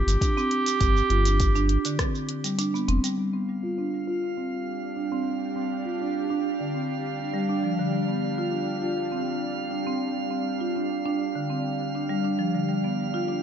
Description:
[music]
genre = organic downtempo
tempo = 101 BPM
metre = 4/4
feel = straight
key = unclear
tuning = A4 = 440 Hz
[part]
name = clear clarinet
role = melody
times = 0.0-2.5 s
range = G4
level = -27 LUFS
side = right 4 dB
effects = ping-pong delay
[part]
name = marimba with medium mallets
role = arpeggios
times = 0.0-13.4 s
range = D3 to F4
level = -27 LUFS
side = equal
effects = low-pass filter, ping-pong delay
[part]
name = warm sub bass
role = bass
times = 0.0-3.0 s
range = F1 to G1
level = -22 LUFS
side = equal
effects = sidechain pumping
[part]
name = deep house drum kit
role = drums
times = 0.1-3.2 s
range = hi-hat, rim click, shaker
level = -31 LUFS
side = right 1 dB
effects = none
[part]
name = electronic kick drum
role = drums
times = 0.2-2.1 s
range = none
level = -25 LUFS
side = equal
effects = none
[part]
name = bowed-like drone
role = sustained chords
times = 4.4-13.4 s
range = G3 to G4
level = -32 LUFS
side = equal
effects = built-in reverb, vintage 12-bit sampler grit, sidechain pumping
[part]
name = drifting glass-harmonics texture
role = texture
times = 3.5-13.4 s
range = F5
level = -35 LUFS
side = right 8 dB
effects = chorus, built-in reverb
[sound]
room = light reverb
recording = nothing above 7.8 kHz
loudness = -24 LUFS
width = side -8 dB against mid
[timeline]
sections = 0.0-3.2 A section; 3.2-13.4 B section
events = kick drops out 2.6-3.2; filter sweep on marimba 3.2-13.4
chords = 0.0 Gsus4

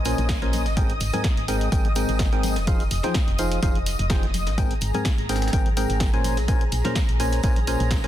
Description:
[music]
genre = piano house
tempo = 126 BPM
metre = 4/4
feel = swing 54% on 16ths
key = Ab major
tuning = A4 = 440 Hz
[part]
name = analog string pad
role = sustained chords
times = 0.0-8.1 s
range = Ab4 to Eb6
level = -32 LUFS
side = left 2 dB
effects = ensemble chorus, sidechain pumping
[part]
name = solid FM bass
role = bass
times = 0.0-8.1 s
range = F1 to Bb1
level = -26 LUFS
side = equal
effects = sidechain pumping
[part]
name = tambourine and congas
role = percussion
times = 0.0-8.0 s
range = none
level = -36 LUFS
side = left 5 dB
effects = none
[part]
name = percussive organ stab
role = riff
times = 0.1-8.1 s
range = Ab2 to Bb5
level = -26 LUFS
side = equal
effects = chorus, sidechain pumping, dub echo
[part]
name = breakbeat sampler-style drum kit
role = drums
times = 0.1-8.1 s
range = hi-hat, snare drum, tambourine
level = -38 LUFS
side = equal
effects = none
[part]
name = punchy analog drum machine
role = drums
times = 0.1-8.1 s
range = hi-hat, snare drum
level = -32 LUFS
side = equal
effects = none
[part]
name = electronic kick drum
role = drums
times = 0.3-8.0 s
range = none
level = -23 LUFS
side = equal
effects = none
[sound]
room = digital ambience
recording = dense, heavily limited modern master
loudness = -20 LUFS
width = side -12 dB against mid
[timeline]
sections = 0.0-8.1 A section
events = none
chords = 0.0 Bbm9; 0.8 Abmaj9; 2.7 Fm7; 4.6 Abmaj9; 6.2 Bbm9

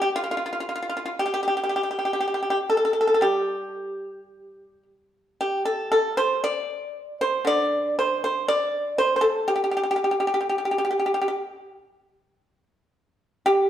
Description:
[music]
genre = chinese traditional, Chinese solo plucked strings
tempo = 54-61 BPM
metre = 4/4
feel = rubato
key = G shang mode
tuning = A4 = 440 Hz
[part]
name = pipa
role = solo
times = 0.0-13.7 s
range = D3 to D5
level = -22 LUFS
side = equal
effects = none
[sound]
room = wet stone room reverb, RT60 1.3 s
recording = band playing live in one room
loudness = -22 LUFS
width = side -10 dB against mid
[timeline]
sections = 0.0-5.4 A section; 5.4-13.7 B section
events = none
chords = none

